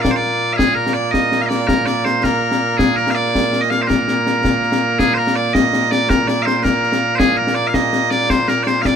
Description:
scottish traditional, Scottish pipe music; 109 BPM (dotted quarters); 6/8; straight; Bb mixolydian; A4 = 441 Hz
loud bright bagpipes; melody; 0.0-9.0 s; Bb2 to F5; -16 LUFS; right 1 dB
concert snare drum and concert bass drum; drums; 0.0-8.9 s; -19 LUFS; left 2 dB
light reverb; minimal, uncompressed stereo recording; -14 LUFS; side -7 dB against mid
0.0-5.0 A section; 5.0-9.0 A section
0.04 | 0.59 1.15 | 1.70 2.25 | 2.80 3.35 | 3.90 4.45 | 5.00 5.55 | 6.10 6.65 | 7.20 7.75 | 8.30 8.85

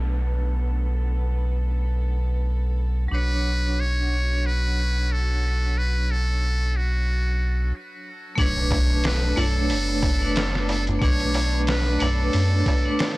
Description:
trip hop; 91 BPM; 4/4; swing 56% on 16ths; B minor; A4 = 440 Hz
vibraphone with hard mallets; accompaniment; 0.0-13.2 s; F#3 to C#5; -29 LUFS; equal; tremolo
clear studio violin section; sustained chords; 0.0-13.2 s; B3 to B4; -36 LUFS; equal; vintage 12-bit sampler grit, low-pass filter
soft dub sub bass; bass; 0.0-12.6 s; F#1 to F#2; -22 LUFS; equal; tube saturation
downlifter and impact; sound effects; 0.0-3.1, 8.5-11.0 s; -42 LUFS; equal
trumpet with metal mute; melody; 3.1-13.2 s; F#4 to C#5; -28 LUFS; equal; dub echo
trip hop sampler-style drum kit; drums; 8.4-13.2 s; hi-hat, kick drum, snare drum; -25 LUFS; equal
darbuka; percussion; 8.4-13.1 s; -33 LUFS; right 1 dB
studio reverb; dry, gritty hardware recording; -20 LUFS; side -21 dB against mid
0.0-8.4 A section; 8.4-13.2 B section
filter sweep on violin section 0.0-8.4; break 7.7-8.4; impact 8.4-11.0
0.0 Bm7; 3.1 Dmaj7/B; 8.4 Bm7
| 0.47 1.13 1.79 2.45 | 3.11 3.77 4.42 5.08 | 5.74 6.40 7.06 7.72 | 8.38 9.04 9.70 10.36 | 11.02 11.68 12.34 13.00

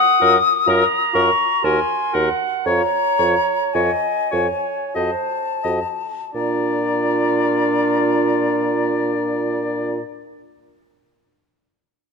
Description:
classical, slow romantic movement for wind quintet; 41-64 BPM; 3/4; rubato; A4 = 442 Hz
mellow silver concert flute; melody; 0.0-10.0 s; Ab5 to Eb6; -21 LUFS; left 8 dB
clear clarinet; accompaniment; 0.0-10.0 s; F4 to Bb5; -23 LUFS; right 10 dB
clear oboe; second line; 0.2-10.0 s; Bb4 to Eb5; -25 LUFS; left 5 dB
warm French horn; accompaniment; 0.2-10.0 s; D4 to Gb4; -25 LUFS; right 2 dB
mellow bassoon; bass; 0.2-10.0 s; Eb2 to Bb2; -23 LUFS; right 1 dB
light reverb; close, detailed microphones; -16 LUFS; side -4 dB against mid
0.0-6.3 A section; 6.3-10.3 B section
slowing down 0.0-6.3
0.0 Gbmaj7; 1.6 Ebm; 2.7 Bbm/F; 5.0 F7b9; 6.3 Bb
0.67 1.63 | 2.66 3.75 4.96 | 6.35 7.68 8.99

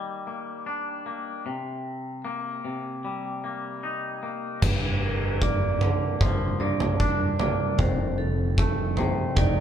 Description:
post-rock; 76 BPM; 4/4; straight; G minor; A4 = 439 Hz
twangy electric guitar; arpeggios; 0.0-9.6 s; F2 to Eb4; -30 LUFS; left 2 dB
deep dark ambient pad; sustained chords; 6.0-9.6 s; F3 to Bb4; -35 LUFS; right 2 dB; chorus, built-in reverb
picked electric bass; bass; 4.6-9.6 s; F1 to G2; -28 LUFS; equal
oversized low-tuned drum kit; drums; 4.6-9.6 s; crash cymbal, kick drum, toms; -25 LUFS; right 1 dB
vibraphone with hard mallets; arpeggios; 5.0-9.6 s; A4 to D5; -31 LUFS; right 4 dB
moderate large studio reverb, RT60 1.4 s; band playing live in one room; -24 LUFS; side -9 dB against mid
0.0-4.6 A section; 4.6-9.6 A section
0.0 Ebmaj7; 1.5 Cm7; 4.6 Gm7; 7.8 F7
0.67 | 1.46 2.25 3.04 3.83 | 4.62 5.42 6.21 7.00 | 7.79 8.58 9.37

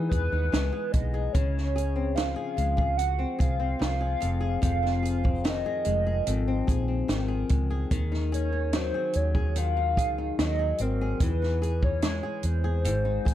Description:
indie pop, bedroom pop; 73 BPM; 4/4; straight; Db major; A4 = 440 Hz
warbly nostalgic lead; melody; 0.0-13.3 s; Bb4 to Gb5; -30 LUFS; right 1 dB; phaser, analog chorus
flamenco guitar; accompaniment; 0.0-13.3 s; F2 to G#4; -32 LUFS; left 5 dB; wide subtle chorus, vibrato effect
vintage muted fingered electric bass; bass; 0.0-13.3 s; F1 to E2; -28 LUFS; equal
compact cocktail drum kit; drums; 0.1-13.3 s; hi-hat, kick drum, snare drum; -28 LUFS; right 1 dB
little or no reverb; -24 LUFS; side -12 dB against mid
0.0-13.3 A section
0.0 Emaj7; 1.4 Dbmaj7; 4.2 Fm7; 7.9 Ab7/Eb; 11.2 Emaj7
0.53 | 1.35 2.17 2.99 3.81 | 4.64 5.46 6.28 7.10 | 7.92 8.74 9.56 10.39 | 11.21 12.03 12.85

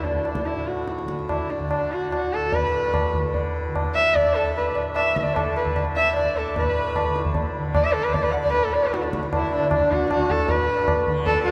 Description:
indian classical, Hindustani; 150 BPM; 5/4; straight; D raga bhupali; A4 = 438 Hz
dark sarangi; melody; 0.0-11.5 s; D4 to F#5; -25 LUFS; equal
tanpura; drone; 0.0-11.5 s; D2 to D3; -33 LUFS; equal
tabla; percussion; 0.0-11.4 s; -28 LUFS; equal
hand-pumped harmonium; second line; 2.6-11.5 s; D4 to E5; -34 LUFS; equal
wet cathedral reverb, RT60 5.2 s; recorded in a church or concert hall; -23 LUFS; mono
0.0-6.6 A section; 6.6-11.5 B section
speeding up 0.0-11.5
0.05 | 0.46 0.88 1.29 1.70 2.11 | 2.52 2.93 3.34 3.74 4.15 | 4.55 4.96 5.36 5.76 6.16 | 6.56 6.96 7.35 7.75 8.14 | 8.54 8.93 9.32 9.71 10.10 | 10.49 10.88 11.26

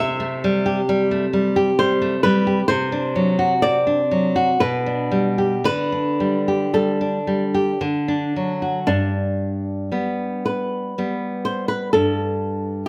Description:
romantic duo for nylon-string guitar and classical guitar; 54-67 BPM; 3/4; rubato; G major; A4 = 440 Hz
flamenco guitar; melody; 0.0-12.9 s; D4 to E5; -25 LUFS; equal
nylon-string guitar; accompaniment; 0.0-12.8 s; G2 to G4; -22 LUFS; equal
moderate recital hall reverb, RT60 1.4 s; close, detailed microphones; -21 LUFS; mono
0.0-8.9 A section; 8.9-12.9 B section
0.0 Am7/C; 2.7 D7/C; 4.6 G/B; 5.7 Dsus4; 7.8 D; 8.9 G
0.88 1.78 | 2.69 3.62 4.60 | 5.65 6.74 7.81 | 8.88 9.93 10.98 | 11.94 12.87

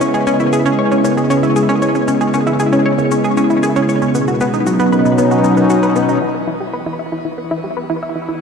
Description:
ambient, sequencer-driven space music; 116 BPM; 4/4; straight; C# minor; A4 = 440 Hz
sweeping resonant pad; sustained chords; 0.0-8.4 s; B2 to G4; -14 LUFS; equal; chorus, shimmer reverb
analog pluck; riff; 0.0-8.4 s; B3 to E5; -17 LUFS; equal; chorus, tape echo, shimmer reverb
shaker and bongos; percussion; 0.0-6.2 s; -32 LUFS; right 4 dB; tape echo
wet lush hall reverb, RT60 2.5 s; dreamy mix soaked in reverb, faint mains hum; -12 LUFS; side -6 dB against mid
0.0-6.2 A section; 6.2-8.4 B section
0.0 C#m7; 4.1 B; 6.2 Em
| 0.01 0.53 1.05 1.56 | 2.08 2.60 3.12 3.63 | 4.15 4.67 5.18 5.70 | 6.22 6.74 7.25 7.77 | 8.29

